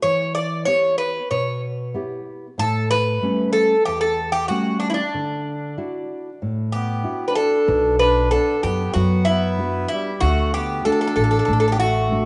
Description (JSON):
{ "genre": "greek folk, Greek bouzouki band", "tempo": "94 BPM", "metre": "4/4", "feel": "straight", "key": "D major", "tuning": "A4 = 439 Hz", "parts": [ { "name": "Greek bouzouki", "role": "melody", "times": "0.0-12.3 s", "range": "D4 to D5", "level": "-22 LUFS", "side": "equal", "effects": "none" }, { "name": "nylon-string guitar", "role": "accompaniment", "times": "0.0-12.3 s", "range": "E2 to F#5", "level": "-28 LUFS", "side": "equal", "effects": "none" }, { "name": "accordion", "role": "second line", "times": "6.7-12.3 s", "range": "G3 to D4", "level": "-29 LUFS", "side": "equal", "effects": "none" }, { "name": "upright bass", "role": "bass", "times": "7.7-12.3 s", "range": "A1 to F#2", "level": "-24 LUFS", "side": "equal", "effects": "none" } ], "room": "wet echo chamber reverb, RT60 1.7 s, small room ambience", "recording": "nothing above 10.7 kHz", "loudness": "-20 LUFS", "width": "mono", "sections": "0.0-7.7 A section; 7.7-12.3 B section", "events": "none", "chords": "0.0 Em; 2.6 A7; 5.1 Dadd9; 7.7 Bm; 10.2 D" }